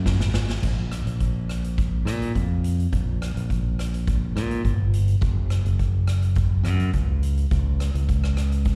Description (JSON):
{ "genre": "calypso", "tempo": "104 BPM", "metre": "4/4", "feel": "straight", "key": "unclear", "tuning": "A4 = 440 Hz", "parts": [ { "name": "modern bright fingered electric bass", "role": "bass", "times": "0.0-8.8 s", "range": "F#1 to A#2", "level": "-24 LUFS", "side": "equal", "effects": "none" }, { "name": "street-band drum kit", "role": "drums", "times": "0.1-8.8 s", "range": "crash cymbal, hi-hat, kick drum, rim click, snare drum", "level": "-29 LUFS", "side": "equal", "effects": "none" } ], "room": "little or no reverb", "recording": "live gig heard through the venue's PA, recital hall reverb", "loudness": "-23 LUFS", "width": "mono", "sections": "0.6-8.8 A section", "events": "drum fill 0.0-0.6", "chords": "none", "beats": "0.06 | 0.63 1.20 1.78 2.35 | 2.92 3.50 4.07 4.64 | 5.22 5.79 6.37 6.94 | 7.52 8.09 8.67" }